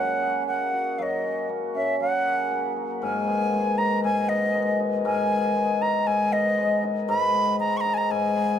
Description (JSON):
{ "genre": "folktronica", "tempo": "118 BPM", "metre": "4/4", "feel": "straight", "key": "G# minor", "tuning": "A4 = 442 Hz", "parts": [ { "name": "wooden flute", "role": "melody", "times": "0.0-8.6 s", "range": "D#5 to C#6", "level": "-24 LUFS", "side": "equal", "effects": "ping-pong delay" }, { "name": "cimbalom", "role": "arpeggios", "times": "0.0-8.6 s", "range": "G#2 to A#4", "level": "-25 LUFS", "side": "left 2 dB", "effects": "none" } ], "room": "moderate studio reverb, RT60 0.6 s", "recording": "none", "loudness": "-22 LUFS", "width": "side -9 dB against mid", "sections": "0.0-3.0 A section; 3.0-8.6 B section", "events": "none", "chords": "0.0 F#add9; 3.0 G#madd9" }